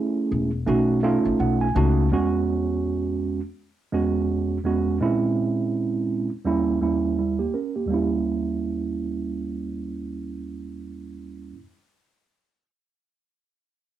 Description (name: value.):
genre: hip hop.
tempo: 83 BPM.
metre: 4/4.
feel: swing 59% on 16ths.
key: unclear.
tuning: A4 = 440 Hz.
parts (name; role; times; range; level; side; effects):
mellow tine electric piano; accompaniment; 0.0-11.6 s; Eb2 to A5; -23 LUFS; right 3 dB; medium stereo tremolo, low-pass filter, cassette tape.
upright bass; bass; 0.3-2.1 s; Fb1 to Db2; -23 LUFS; left 2 dB; none.
room: moderate small room reverb, RT60 0.5 s.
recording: home recording on cassette.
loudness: -22 LUFS.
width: side -12 dB against mid.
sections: 0.0-7.9 A section; 7.9-10.8 B section.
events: filter sweep on tine electric piano 0.0-7.9; tine electric piano fill 0.7-2.1.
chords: 0.0 Gbm7 (rootless); 0.7 B7; 2.1 E6; 5.0 Bbm7b5; 6.5 Eb7b9.